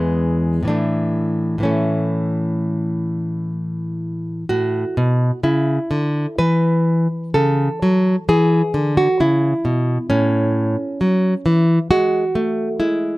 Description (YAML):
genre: classical, baroque-style dance for nylon-string guitar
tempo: 64 BPM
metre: 4/4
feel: rubato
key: A major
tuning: A4 = 442 Hz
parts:
  - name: nylon-string guitar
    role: solo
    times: 0.0-13.2 s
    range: E2 to B4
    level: -16 LUFS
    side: equal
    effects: none
room: little or no reverb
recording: close, detailed microphones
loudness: -16 LUFS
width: side -19 dB against mid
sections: 0.0-4.5 A section; 4.5-13.2 B section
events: none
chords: 0.0 E; 0.7 A; 8.3 E5; 10.1 A; 11.9 E